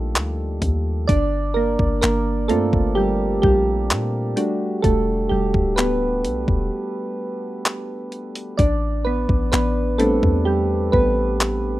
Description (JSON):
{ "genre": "contemporary R&B", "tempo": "64 BPM", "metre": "4/4", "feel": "straight", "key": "A minor", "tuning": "A4 = 440 Hz", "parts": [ { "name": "soft electric-piano-like synth keys", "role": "accompaniment", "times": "0.0-11.8 s", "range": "G3 to D5", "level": "-20 LUFS", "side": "right 1 dB", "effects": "chorus" }, { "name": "warm 808-style bass", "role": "bass", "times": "0.0-11.8 s", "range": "D1 to Bb2", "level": "-23 LUFS", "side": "equal", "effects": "none" }, { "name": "clean 12-bit digital drum machine", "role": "drums", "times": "0.2-11.6 s", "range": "handclaps, hi-hat, kick drum", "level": "-20 LUFS", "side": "equal", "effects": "none" } ], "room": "little or no reverb", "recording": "rough home demo mix", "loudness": "-18 LUFS", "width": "side -16 dB against mid", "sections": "0.0-11.8 A section", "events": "synth keys solo 0.0-11.8; break 6.7-8.6", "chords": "0.0 Cm11 (rootless); 1.1 Gm11; 4.4 Em11; 8.6 Am11", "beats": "0.15 | 1.09 2.03 2.96 3.90 | 4.84 5.78 6.71 7.65 | 8.59 9.53 10.46 11.40" }